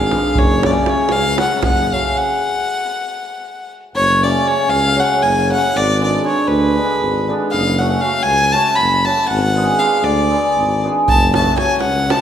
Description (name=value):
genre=balkan folk, Balkan wedding band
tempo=235 BPM (eighths)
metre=7/8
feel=straight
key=F# harmonic minor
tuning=A4 = 440 Hz
part: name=rich violin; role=melody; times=0.0-12.2 s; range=B4 to B5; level=-17 LUFS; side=left 2 dB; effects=none
part: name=hammered dulcimer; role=accompaniment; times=0.0-12.2 s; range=C#3 to G#4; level=-18 LUFS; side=right 1 dB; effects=none
part: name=mellow tuba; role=bass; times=0.0-12.1 s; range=F#1 to D2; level=-20 LUFS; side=equal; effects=none
part: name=davul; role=percussion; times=0.1-1.8, 11.1-12.2 s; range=none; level=-19 LUFS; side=right 1 dB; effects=none
room=wet recital hall reverb, RT60 1.4 s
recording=recorded in a church or concert hall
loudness=-13 LUFS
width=side -9 dB against mid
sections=0.0-4.0 A section; 4.0-12.2 A section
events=stop 2.2-4.0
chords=0.4 F#m; 2.2 N.C.; 4.0 F#m; 5.7 G#dim; 7.5 F#m; 9.3 G#dim; 11.1 F#m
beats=0.10 | 0.36 0.62 0.88 1.13 1.39 1.65 1.90 | 2.16 2.41 2.67 2.93 3.18 3.44 3.70 | 3.95 4.21 4.46 4.72 4.98 5.23 5.49 | 5.74 6.00 6.25 6.51 6.76 7.02 7.27 | 7.53 7.78 8.04 8.29 8.55 8.80 9.06 | 9.31 9.56 9.82 10.07 10.33 10.58 10.84 | 11.09 11.34 11.60 11.85 12.10